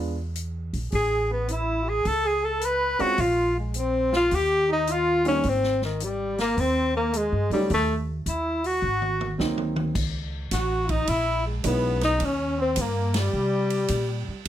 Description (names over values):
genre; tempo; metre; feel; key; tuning
jazz, small-group swing and bop; 106 BPM; 4/4; swing 67% on 8ths; unclear; A4 = 440 Hz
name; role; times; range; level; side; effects
warm upright piano; accompaniment; 0.0-12.2 s; Gb3 to F4; -29 LUFS; right 4 dB; none
upright bass; bass; 0.0-14.5 s; Ab1 to C3; -29 LUFS; equal; none
swinging big-band drum kit; drums; 0.4-14.5 s; crash cymbal, hi-hat, kick drum, ride cymbal, snare drum, toms; -32 LUFS; equal; none
brilliant trombone; second line; 0.9-14.5 s; Eb3 to Cb5; -31 LUFS; right 6 dB; none
warm tenor saxophone; melody; 1.0-14.5 s; Eb3 to Cb5; -24 LUFS; left 2 dB; none
room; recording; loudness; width
moderate studio reverb, RT60 0.6 s; none; -22 LUFS; side -11 dB against mid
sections
0.0-10.0 A section; 10.0-14.5 B section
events
drum fill 8.8-10.0; band accent 13.0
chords
0.0 E7b9; 0.9 Amaj7; 3.2 Fmadd11/Bb; 4.3 Eb; 5.4 Ab5; 7.7 Ebdim; 8.8 Ab7; 10.0 Dbm9; 12.2 Eb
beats
0.36 | 0.92 1.49 2.05 2.62 | 3.18 3.75 4.31 4.88 | 5.44 6.00 6.57 7.13 | 7.70 8.26 8.82 9.39 | 9.95 10.52 11.08 11.64 | 12.21 12.77 13.33 13.89 | 14.46